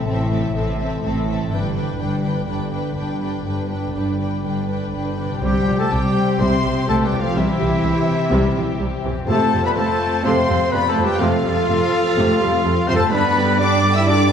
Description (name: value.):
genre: cinematic.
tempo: 125 BPM.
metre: 4/4.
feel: straight.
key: C major.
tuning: A4 = 440 Hz.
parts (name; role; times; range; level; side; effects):
warm symphonic violin section; melody; 0.0-14.3 s; E5 to E6; -25 LUFS; left 5 dB; none.
warm symphonic violin section; second line; 0.0-14.3 s; B3 to B4; -29 LUFS; left 3 dB; none.
warm symphonic viola section; accompaniment; 0.0-14.3 s; C3 to D4; -25 LUFS; right 1 dB; none.
concert harp; arpeggios; 0.0-14.3 s; F2 to C5; -28 LUFS; left 4 dB; none.
rich symphonic cello section; bass; 0.1-14.3 s; G2 to E4; -24 LUFS; right 2 dB; none.
warm studio double bass section; bass; 0.1-14.3 s; G1 to G2; -25 LUFS; right 2 dB; none.
hollow concert flute; second line; 5.4-14.3 s; G4 to G5; -26 LUFS; left 1 dB; none.
warm clarinet; second line; 5.4-14.3 s; E4 to E5; -27 LUFS; right 1 dB; none.
mellow French horn section; sustained chords; 5.4-14.2 s; G3 to D4; -27 LUFS; left 2 dB; none.
clear trumpet; stabs; 5.4-14.3 s; E4 to E5; -24 LUFS; equal; none.
room: wet scoring stage reverb, RT60 1.6 s.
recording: heard from further back in the room.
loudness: -17 LUFS.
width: side -8 dB against mid.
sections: 0.0-5.4 A section; 5.4-14.3 B section.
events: build-up 0.0-5.4.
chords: 0.0 Am; 1.5 G; 5.4 C; 9.3 F; 13.1 G.